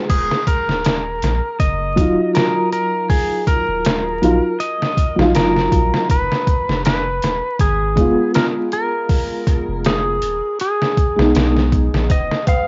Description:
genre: trip hop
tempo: 80 BPM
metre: 4/4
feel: swing 54% on 16ths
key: Eb minor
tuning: A4 = 440 Hz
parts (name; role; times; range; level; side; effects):
- felt-muted upright piano; accompaniment; 0.0-12.1 s; Gb3 to F4; -21 LUFS; equal; tremolo, cassette tape
- wind-like tuned noise texture; texture; 0.1, 12.6-12.7 s; Ab3 to Ab4; -39 LUFS; equal; none
- clean lap steel guitar; melody; 0.1-12.7 s; Ab4 to F5; -23 LUFS; equal; tape echo
- soft dub sub bass; bass; 0.1-12.3 s; Eb1 to Cb2; -24 LUFS; equal; none
- trip hop sampler-style drum kit; drums; 0.1-12.7 s; crash cymbal, hi-hat, kick drum, snare drum; -21 LUFS; equal; cassette tape
- tabla; percussion; 12.1-12.6 s; none; -29 LUFS; equal; none
room: light reverb, digital ambience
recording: home recording on cassette, vinyl crackle, nothing above 7.6 kHz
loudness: -17 LUFS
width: mono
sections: 0.1-12.7 A section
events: none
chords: 0.1 Ebmadd9; 6.1 Fdim; 12.1 Ebsus2

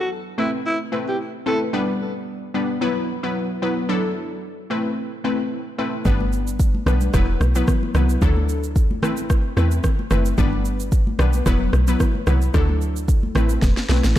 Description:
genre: afrobeats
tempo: 111 BPM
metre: 4/4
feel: swing 55% on 16ths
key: unclear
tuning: A4 = 441 Hz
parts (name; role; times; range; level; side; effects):
- growling alto saxophone; melody; 0.0-1.6 s; E4 to A4; -25 LUFS; equal; digital delay
- glassy wavetable pluck; accompaniment; 0.0-14.1 s; F#3 to B4; -23 LUFS; left 1 dB; chorus
- deep log drum bass; bass; 6.1-14.2 s; E1 to E2; -19 LUFS; equal; none
- afro-pop drum kit; drums; 6.1-14.2 s; kick drum, rim click, shaker, snare drum; -21 LUFS; equal; none
- congas; percussion; 6.1-14.2 s; none; -30 LUFS; right 1 dB; none
room: light reverb, digital ambience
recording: dark, warm production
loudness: -18 LUFS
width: side -13 dB against mid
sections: 0.0-6.1 A section; 6.1-14.2 B section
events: drum fill 13.6-14.2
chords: 0.4 Amadd9; 1.7 G; 2.8 Esus2; 3.9 Dadd9; 4.7 Amadd9; 6.1 G; 7.1 Esus2; 8.2 Dadd9; 9.0 Amadd9; 10.4 G; 11.5 Esus2; 12.5 Dadd9; 13.4 Amadd9

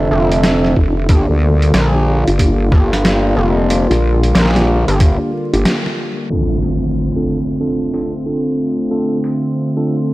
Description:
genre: glitch hop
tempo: 92 BPM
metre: 4/4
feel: swing 64% on 16ths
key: unclear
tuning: A4 = 440 Hz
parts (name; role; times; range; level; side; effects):
- warm analog pad; sustained chords; 0.0-10.1 s; D3 to E5; -18 LUFS; equal; chorus, sidechain pumping
- mellow tine electric piano; stabs; 0.0-10.0 s; Bb3 to A4; -21 LUFS; equal; sidechain pumping, low-pass filter, analog delay
- gritty driven synth bass; bass; 0.0-5.2 s; F1 to Bb1; -15 LUFS; equal; distortion
- boom bap sampler-style drum kit; drums; 0.3-9.4 s; crash cymbal, hi-hat, snare drum; -18 LUFS; equal; studio reverb
- vowel-sweep wobble bass; bass; 0.8-5.7 s; F1 to D2; -14 LUFS; equal; chorus, transformer saturation
- electronic kick drum; drums; 0.8-5.2 s; none; -12 LUFS; equal; studio reverb
- impact; sound effects; 6.3-8.9 s; none; -22 LUFS; equal; none
room: light reverb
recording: dry, gritty hardware recording, vinyl crackle, low-pass filter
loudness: -12 LUFS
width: side -18 dB against mid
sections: 0.0-6.3 A section; 6.3-10.1 B section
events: break 5.7-6.3; band accent 5.7-6.0; impact 6.3-8.9; filter sweep 6.3-10.1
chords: 0.0 F6; 1.1 Gm7; 6.3 F6

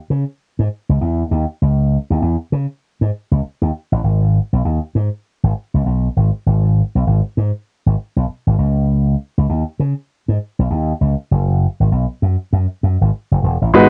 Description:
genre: R&B, new jack swing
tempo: 99 BPM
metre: 4/4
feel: swing 61% on 16ths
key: unclear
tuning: A4 = 442 Hz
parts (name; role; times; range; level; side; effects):
- slap bass with an envelope filter; bass; 0.1-13.9 s; E1 to C#3; -17 LUFS; equal; none
- warm concert grand piano; accompaniment; 13.7-13.9 s; G#3 to B4; -8 LUFS; equal; cassette tape
room: small room reverb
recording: home recording on cassette, nothing above 10.4 kHz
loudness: -18 LUFS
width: mono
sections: 0.0-13.7 A section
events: none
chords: 0.0 C#madd9; 4.0 G#m; 8.6 C#sus2; 11.3 N.C.

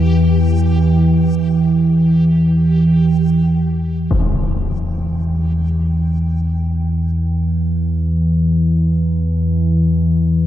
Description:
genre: dark ambient drone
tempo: free time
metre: none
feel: none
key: E minor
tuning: A4 = 440 Hz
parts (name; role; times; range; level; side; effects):
- deep rumbling drone; drone; 0.0-10.5 s; E2 to E3; -13 LUFS; equal; built-in reverb
- backwards swelling texture; texture; 0.0-4.1 s; G4; -35 LUFS; left 1 dB; built-in reverb
- impact; percussion; 4.1-4.3 s; none; -22 LUFS; left 1 dB; low-pass filter on sfx
room: wet huge ambient reverb, RT60 7.3 s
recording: dark, warm production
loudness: -13 LUFS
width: side -12 dB against mid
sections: 0.0-4.1 A section; 4.1-10.5 B section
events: none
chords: 0.0 Em

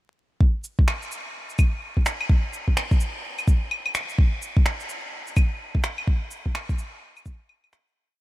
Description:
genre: future garage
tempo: 127 BPM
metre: 4/4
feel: swing 61% on 16ths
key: none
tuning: none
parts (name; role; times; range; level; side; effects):
- electronic kick drum; drums; 0.4-7.4 s; none; -19 LUFS; equal; none
- electronic shaker, finger snaps and claves; drums; 0.6-7.9 s; none; -29 LUFS; equal; none
room: little or no reverb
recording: vinyl crackle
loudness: -21 LUFS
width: side -17 dB against mid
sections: 0.4-8.0 groove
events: fade-out 5.4-8.0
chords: none

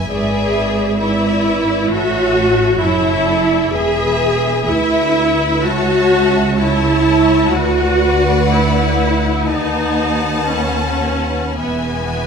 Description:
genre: classical, slow romantic movement for string orchestra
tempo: 52-67 BPM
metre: 4/4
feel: rubato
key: A major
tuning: A4 = 436 Hz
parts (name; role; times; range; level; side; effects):
- warm studio violin section; melody; 0.0-12.3 s; E5 to A5; -24 LUFS; left 4 dB; none
- warm studio violin section; second line; 0.0-12.3 s; A4 to F#5; -22 LUFS; left 3 dB; none
- rich studio cello section; bass; 0.0-12.3 s; C#2 to A2; -22 LUFS; right 3 dB; none
- warm studio double bass section; bass; 0.0-12.3 s; E1 to D#2; -22 LUFS; right 2 dB; none
- warm studio viola section; accompaniment; 0.1-12.3 s; B3 to G#4; -16 LUFS; equal; none
room: wet scoring stage reverb, RT60 1.7 s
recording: minimal, uncompressed stereo recording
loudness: -13 LUFS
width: side -6 dB against mid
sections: 0.0-12.3 A section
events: none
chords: 0.1 E7/G#; 1.9 A; 3.7 E; 5.6 A/C#; 7.5 Bm/D; 9.5 B7/D#; 11.6 E

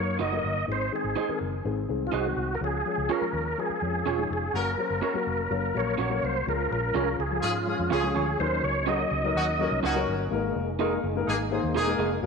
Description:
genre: soul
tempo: 125 BPM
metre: 4/4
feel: straight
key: Ab mixolydian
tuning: A4 = 442 Hz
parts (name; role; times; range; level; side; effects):
- tonewheel organ; melody; 0.0-9.8 s; F4 to Eb5; -29 LUFS; right 1 dB; chorus vibrato, fast rotary speaker
- dark upright piano; accompaniment; 0.0-12.3 s; Eb3 to C5; -31 LUFS; left 8 dB; none
- vintage muted fingered electric bass; bass; 0.0-12.3 s; Fb1 to Ab2; -32 LUFS; right 1 dB; none
- electric guitar through a small old amp; stabs; 0.2-12.1 s; Db4 to Eb5; -32 LUFS; right 10 dB; none
- warm horn section; second line; 4.5-12.1 s; Bb3 to Bb4; -31 LUFS; equal; none
- mellow tonewheel organ; sustained chords; 6.5-12.3 s; F3 to Ab4; -36 LUFS; right 1 dB; slow rotary speaker, chorus vibrato
room: wet echo chamber reverb, RT60 2.0 s, studio ambience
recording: 1960s-style stereo with parts hard left and right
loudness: -25 LUFS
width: side -5 dB against mid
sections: 0.0-6.5 A section; 6.5-12.3 B section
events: band accent 4.5-6.5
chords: 0.0 Ebm; 0.7 Ab; 2.6 Db; 4.5 Gb; 6.5 Db; 8.4 Ebm7; 10.3 Absus2

